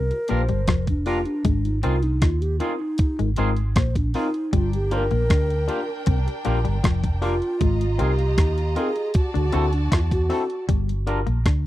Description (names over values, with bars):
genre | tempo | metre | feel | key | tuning
lovers rock reggae | 78 BPM | 4/4 | straight | G phrygian | A4 = 440 Hz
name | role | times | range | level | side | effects
mellow round clay ocarina | melody | 0.0-10.7 s | D4 to C5 | -27 LUFS | right 1 dB | tape echo
semi-hollow electric guitar | riff | 0.0-11.7 s | F3 to E4 | -30 LUFS | left 12 dB | harmonic tremolo
vintage muted fingered electric bass | bass | 0.0-11.7 s | F1 to E2 | -23 LUFS | equal | none
overdriven tine electric piano | accompaniment | 0.1-11.2 s | Bb3 to Bb4 | -28 LUFS | left 5 dB | none
twangy electric guitar | stabs | 0.1-11.2 s | Bb3 to Bb4 | -32 LUFS | right 5 dB | spring reverb
crisp 8-bit digital drum machine | drums | 0.1-11.6 s | hi-hat, kick drum, rim click | -22 LUFS | equal | none
warm symphonic violin section | second line | 4.5-10.7 s | D4 to Bb5 | -35 LUFS | right 1 dB | none
room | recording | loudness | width
little or no reverb | dry, close 1970s-style studio recording | -20 LUFS | side -15 dB against mid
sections
0.0-10.7 A section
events
ocarina solo 0.0-10.7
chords
0.0 Gm7; 1.5 Ab6; 4.5 Gm7; 7.6 Ab6; 9.1 D7; 10.7 Gm7